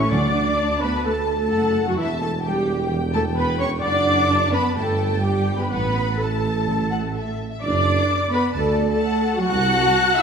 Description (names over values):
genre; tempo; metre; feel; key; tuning
classical; 129 BPM; 4/4; straight; D major; A4 = 440 Hz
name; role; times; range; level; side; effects
warm symphonic violin section; second line; 0.0-10.2 s; E5 to F#6; -28 LUFS; left 4 dB; none
warm studio viola section; accompaniment; 0.0-10.2 s; A3 to F#5; -22 LUFS; equal; none
dark chamber double bass section; bass; 0.0-9.9 s; A1 to G2; -26 LUFS; right 3 dB; none
dark tuba; bass; 0.0-9.9 s; E1 to D2; -28 LUFS; right 3 dB; none
rich symphonic cello section; bass; 0.0-10.2 s; E3 to F#4; -26 LUFS; right 2 dB; none
warm symphonic violin section; melody; 0.1-10.2 s; D5 to A5; -31 LUFS; left 5 dB; none
timpani; percussion; 0.1-0.8, 6.7-7.4 s; A2 to D3; -29 LUFS; left 1 dB; none
room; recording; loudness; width
wet scoring stage reverb, RT60 1.4 s; minimal, uncompressed stereo recording; -18 LUFS; side -6 dB against mid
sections
0.1-10.2 A section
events
none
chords
0.1 D; 2.0 C#dim/E (rootless); 3.8 D/F#; 4.8 Gadd9; 5.7 F#madd11/A; 6.7 A5; 7.6 D/F#; 8.6 D; 9.5 Am6/C